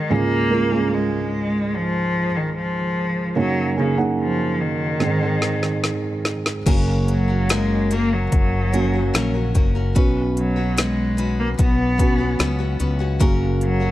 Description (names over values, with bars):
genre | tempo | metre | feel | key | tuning
pop ballad | 74 BPM | 4/4 | straight | unclear | A4 = 440 Hz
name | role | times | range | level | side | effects
clear cello | melody | 0.0-13.9 s | Db3 to Cb4 | -23 LUFS | left 1 dB | none
felt-muted upright piano | accompaniment | 0.0-13.9 s | Db2 to Gb5 | -23 LUFS | right 3 dB | none
deep house drum kit | drums | 5.0-13.8 s | crash cymbal, hi-hat, kick drum, snare drum | -20 LUFS | left 1 dB | none
picked steel-string acoustic guitar | arpeggios | 6.7-13.9 s | Gb3 to Cb5 | -27 LUFS | left 5 dB | none
fretless electric bass | bass | 6.7-13.9 s | Gb1 to Db2 | -22 LUFS | left 1 dB | none
room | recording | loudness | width
small room ambience | dark, warm production | -18 LUFS | side -15 dB against mid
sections
0.0-6.7 A section; 6.7-13.9 B section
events
drum fill 5.0-6.7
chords
0.1 Db; 3.4 Gb6; 5.0 Ab; 6.7 Gb; 10.0 Cbsus2; 13.2 Gb